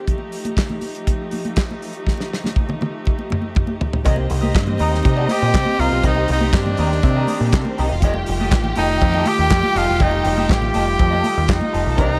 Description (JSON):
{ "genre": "disco", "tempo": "121 BPM", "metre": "4/4", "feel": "straight", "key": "unclear", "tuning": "A4 = 439 Hz", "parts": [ { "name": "bright studio string section", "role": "sustained chords", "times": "0.0-12.2 s", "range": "C3 to G4", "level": "-30 LUFS", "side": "equal", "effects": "none" }, { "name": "damped 70s drum kit", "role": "drums", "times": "0.1-12.1 s", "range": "handclaps, hi-hat, kick drum, snare drum, toms", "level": "-23 LUFS", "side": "equal", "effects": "none" }, { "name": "congas", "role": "percussion", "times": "0.1-12.1 s", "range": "none", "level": "-30 LUFS", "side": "equal", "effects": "none" }, { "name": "clear studio string section", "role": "second line", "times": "4.0-12.2 s", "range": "G3 to Bb5", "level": "-29 LUFS", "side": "equal", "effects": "none" }, { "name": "semi-hollow electric guitar", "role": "accompaniment", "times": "4.0-12.2 s", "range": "G4 to Eb5", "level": "-30 LUFS", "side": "equal", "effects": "wah" }, { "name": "deep dub picked electric bass", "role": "bass", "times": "4.1-12.2 s", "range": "E1 to C3", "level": "-23 LUFS", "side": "equal", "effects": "none" }, { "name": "breathy tenor saxophone", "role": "melody", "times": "4.8-12.2 s", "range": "D4 to G4", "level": "-23 LUFS", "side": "equal", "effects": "none" }, { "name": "warm grand piano", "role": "accompaniment", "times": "12.0-12.2 s", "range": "C3 to Bb4", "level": "-26 LUFS", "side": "equal", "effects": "none" } ], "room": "small room ambience", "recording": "none", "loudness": "-19 LUFS", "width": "mono", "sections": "0.0-4.1 A section; 4.1-12.2 B section", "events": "drum fill 2.1-4.1", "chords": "0.1 F9; 4.1 Cm7; 8.0 F9", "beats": "| 0.08 0.57 1.07 1.57 | 2.07 2.57 3.06 3.56 | 4.06 4.55 5.05 5.54 | 6.04 6.53 7.03 7.52 | 8.02 8.51 9.01 9.50 | 10.00 10.49 10.99 11.48 | 11.98" }